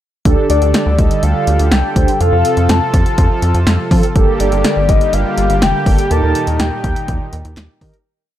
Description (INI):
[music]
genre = synth-pop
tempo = 123 BPM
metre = 4/4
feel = straight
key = unclear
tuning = A4 = 440 Hz
[part]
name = mellow synth brass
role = accompaniment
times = 0.3-8.0 s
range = Bb3 to C5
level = -19 LUFS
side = right 2 dB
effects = chorus
[part]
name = brassy analog pad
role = sustained chords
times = 0.3-8.0 s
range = Bb2 to A4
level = -21 LUFS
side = right 1 dB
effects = chorus
[part]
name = rubbery square bass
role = bass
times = 0.3-7.9 s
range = F1 to F3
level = -15 LUFS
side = equal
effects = none
[part]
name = punchy analog drum machine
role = drums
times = 0.3-8.1 s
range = handclaps, hi-hat, kick drum, snare drum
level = -15 LUFS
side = equal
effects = none
[part]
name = soft octave-layered synth lead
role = melody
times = 0.5-7.5 s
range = D5 to A5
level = -18 LUFS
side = left 2 dB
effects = chorus, phaser, tape echo
[sound]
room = digital ambience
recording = dry, gritty hardware recording, transformer saturation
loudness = -11 LUFS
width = side -12 dB against mid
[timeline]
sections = 0.3-8.1 pre-chorus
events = fade-out 6.1-8.1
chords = 0.3 Dsus4; 2.2 F; 4.2 Gmadd9; 6.1 Eb